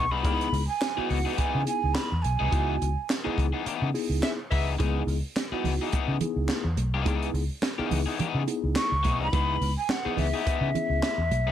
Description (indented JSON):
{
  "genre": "funk",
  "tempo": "106 BPM",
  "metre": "4/4",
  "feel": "swing 56% on 16ths",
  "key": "C# minor",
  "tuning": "A4 = 440 Hz",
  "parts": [
    { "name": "breathy mellow jazz flute", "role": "melody", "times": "0.0-3.1, 8.8-11.5 s", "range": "E5 to C#6", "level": "-29 LUFS", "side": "right 2 dB", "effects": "none" },
    { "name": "crunchy overdriven guitar", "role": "accompaniment", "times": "0.0-11.5 s", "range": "E3 to G#4", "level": "-31 LUFS", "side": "left 10 dB", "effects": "none" },
    { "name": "vintage muted fingered electric bass", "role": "bass", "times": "0.0-11.5 s", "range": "B1 to C#3", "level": "-28 LUFS", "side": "equal", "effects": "none" },
    { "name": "mellow tine electric piano", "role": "stabs", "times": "0.2-11.2 s", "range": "B3 to B4", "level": "-32 LUFS", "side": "equal", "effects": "medium stereo tremolo" },
    { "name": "compact cocktail drum kit", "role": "drums", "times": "0.2-11.5 s", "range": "handclaps, hi-hat, kick drum, snare drum", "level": "-30 LUFS", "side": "equal", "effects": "none" },
    { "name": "warm horn section", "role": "second line", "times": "4.2-4.7 s", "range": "G#4 to E5", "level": "-33 LUFS", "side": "left 3 dB", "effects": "none" },
    { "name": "congas", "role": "percussion", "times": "4.8-11.5 s", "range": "none", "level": "-34 LUFS", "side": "right 5 dB", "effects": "none" }
  ],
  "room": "light reverb",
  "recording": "none",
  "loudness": "-24 LUFS",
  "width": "side -10 dB against mid",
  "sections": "0.0-11.5 A section",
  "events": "band accent 2.5-4.8",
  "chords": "0.0 C#m9",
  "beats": "| 0.24 0.81 1.38 1.95 | 2.52 3.08 3.65 4.22 | 4.79 5.36 5.92 6.49 | 7.06 7.62 8.19 8.76 | 9.33 9.89 10.46 11.03"
}